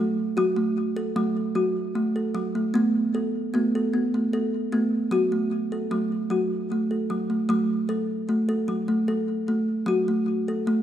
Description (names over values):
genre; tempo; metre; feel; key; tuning
world meditative, meditative tuned percussion; 50 BPM (dotted quarters); 6/8; straight; F# minor; A4 = 440 Hz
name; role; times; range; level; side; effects
kalimba; solo; 0.0-10.8 s; F#3 to A4; -22 LUFS; equal; ping-pong delay
room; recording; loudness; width
wet echo chamber reverb, RT60 1.7 s, studio ambience; none; -22 LUFS; side -10 dB against mid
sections
0.0-7.5 A section; 7.5-10.8 B section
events
none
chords
0.0 F#m; 2.7 Asus2; 5.1 F#m